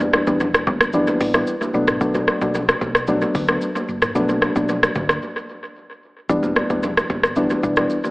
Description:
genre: afrobeats.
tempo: 112 BPM.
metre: 4/4.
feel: straight.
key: E minor.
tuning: A4 = 445 Hz.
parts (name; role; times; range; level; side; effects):
soft electric-piano-like synth keys; accompaniment; 0.0-8.0 s; E3 to D4; -21 LUFS; left 1 dB; chorus, tape echo.
hollow-body short-scale fingered electric bass; bass; 0.0-7.8 s; E1 to D2; -30 LUFS; equal; none.
afro-pop drum kit; drums; 0.0-8.1 s; hi-hat, kick drum, rim click, shaker, toms; -20 LUFS; equal; overdrive, tape echo.
congas; percussion; 0.0-8.1 s; none; -28 LUFS; right 1 dB; tape echo.
room: light reverb, digital ambience.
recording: echo-heavy mix, AM radio sound.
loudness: -17 LUFS.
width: side -22 dB against mid.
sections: 0.0-6.3 A section; 6.3-8.1 B section.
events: break 5.2-6.3.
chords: 0.0 Em7; 1.7 Bm7; 6.3 Em7.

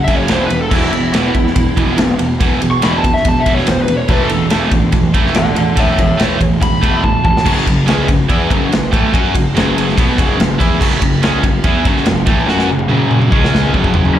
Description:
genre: hard rock.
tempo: 143 BPM.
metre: 4/4.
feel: straight.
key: F# minor.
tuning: A4 = 440 Hz.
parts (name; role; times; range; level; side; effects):
lead guitar through a small cranked amp; melody; 0.0-7.5, 14.1-14.2 s; C#4 to C#6; -18 LUFS; equal; overdrive, slapback echo.
cranked stack guitar; riff; 0.0-14.2 s; E2 to F#4; -17 LUFS; right 5 dB; overdrive.
overdriven semi-hollow guitar; riff; 0.0-14.2 s; E2 to F#4; -21 LUFS; left 11 dB; phaser, slapback echo.
fuzz picked electric bass; bass; 0.0-14.1 s; E1 to F#2; -19 LUFS; left 1 dB; overdrive.
big rock drum kit; drums; 0.1-14.2 s; crash cymbal, kick drum, ride cymbal, snare drum, toms; -15 LUFS; equal; none.
room: studio reverb.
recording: live gig heard through the venue's PA, club reverb.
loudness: -11 LUFS.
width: side -11 dB against mid.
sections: 0.0-7.5 A section; 7.5-14.2 B section.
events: lead electric guitar solo 0.0-7.5; drum fill 7.0-7.5, 12.5-14.2.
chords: 0.3 E5; 4.1 A5/E; 7.5 F#m; 13.3 C#5; 13.7 F#5.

